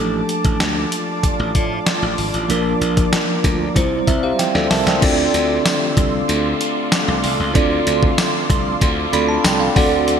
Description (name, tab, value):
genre	1980s-style pop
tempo	95 BPM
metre	4/4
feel	straight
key	D minor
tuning	A4 = 440 Hz
part	bell-like tine electric piano	accompaniment	0.0-10.2 s	F3 to B5	-20 LUFS	right 1 dB	medium stereo tremolo
part	ethereal airy pad	sustained chords	0.0-10.2 s	F4 to D6	-24 LUFS	right 1 dB	ensemble chorus, built-in reverb
part	glassy slap bass	bass	0.0-10.2 s	G#1 to A2	-22 LUFS	left 1 dB	none
part	clean 12-bit digital drum machine	drums	0.3-10.2 s	crash cymbal, hi-hat, kick drum, snare drum, tambourine	-19 LUFS	left 1 dB	gated reverb
part	crunchy overdriven guitar	accompaniment	5.0-10.2 s	D3 to D4	-26 LUFS	left 2 dB	wide subtle chorus
room	moderate lush hall reverb, RT60 2.7 s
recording	bright 1980s-style digital production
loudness	-15 LUFS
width	side -7 dB against mid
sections	0.0-5.0 A section; 5.0-10.2 B section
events	tine electric piano fill 3.8-5.0, 8.8-10.1; drum fill 4.4-5.0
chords	0.0 Dm; 2.5 Bb; 3.8 C; 5.0 Dm7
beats	0.60 1.24 1.87 | 2.50 3.13 3.76 4.39 | 5.02 5.66 6.29 6.92 | 7.55 8.18 8.81 9.45 | 10.08